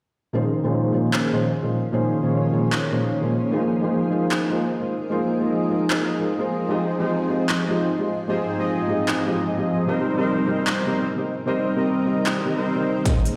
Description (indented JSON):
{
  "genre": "future bass",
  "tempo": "151 BPM",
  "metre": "4/4",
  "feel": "half-time",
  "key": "Bb dorian",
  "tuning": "A4 = 440 Hz",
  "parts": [
    { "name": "felt-muted upright piano", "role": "accompaniment", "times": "0.3-13.1 s", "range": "Bb2 to Eb5", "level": "-27 LUFS", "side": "equal", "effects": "sidechain pumping, delay" },
    { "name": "shimmering ambient pad", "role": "sustained chords", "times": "1.6-13.4 s", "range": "Ab2 to C6", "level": "-35 LUFS", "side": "equal", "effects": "chorus, built-in reverb, sidechain pumping" },
    { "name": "soft supersaw", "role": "riff", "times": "0.3-13.3 s", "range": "Eb3 to Eb5", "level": "-25 LUFS", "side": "equal", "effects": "sidechain pumping, low-pass filter, delay" },
    { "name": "big-room dance drum kit", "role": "drums", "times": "1.1-13.3 s", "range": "handclaps, hi-hat, snare drum", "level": "-29 LUFS", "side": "equal", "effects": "none" },
    { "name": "electronic kick drum", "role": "drums", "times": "13.1 s", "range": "none", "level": "-22 LUFS", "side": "equal", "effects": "none" },
    { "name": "riser", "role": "sound effects", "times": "13.1-13.4 s", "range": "none", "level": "barely audible", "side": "none", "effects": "none" }
  ],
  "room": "moderate lush hall reverb, RT60 1.7 s, digital ambience",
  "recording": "played on a big sound system in a bare room, stone room reverb",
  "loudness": "-22 LUFS",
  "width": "mono",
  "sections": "0.3-13.1 A section",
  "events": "filter sweep on supersaw synth 0.3-13.1; drum fill 13.1-13.4",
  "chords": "0.3 Bbm11; 3.5 Ab69; 6.7 Fm7/Ab; 9.9 Cm7"
}